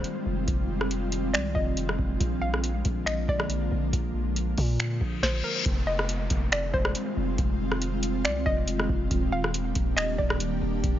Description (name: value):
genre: hip hop, atmospheric cloud-rap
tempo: 139 BPM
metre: 4/4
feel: half-time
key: F dorian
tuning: A4 = 440 Hz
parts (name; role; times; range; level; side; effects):
- hollow square pluck; melody; 0.0-10.8 s; Bb4 to F5; -32 LUFS; equal; chorus, tape echo
- ethereal airy pad; sustained chords; 0.0-11.0 s; D3 to G4; -31 LUFS; equal; ensemble chorus, built-in reverb, sidechain pumping
- long sustained 808-style bass; bass; 0.0-11.0 s; Eb1 to Bb2; -30 LUFS; equal; none
- booming analog drum machine; drums; 0.0-11.0 s; finger snaps, hi-hat, kick drum, rim click, snare drum; -27 LUFS; equal; none
- reverse cymbal and downlifter; sound effects; 5.1-9.1 s; none; -35 LUFS; left 3 dB; none
room: light reverb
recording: nothing above 7.5 kHz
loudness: -24 LUFS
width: side -12 dB against mid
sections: 0.0-5.7 A section; 5.7-11.0 B section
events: reverse cymbal 5.1-5.7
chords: 0.0 Fm9; 2.2 Bb7; 5.7 Fm9; 9.1 Ebmaj7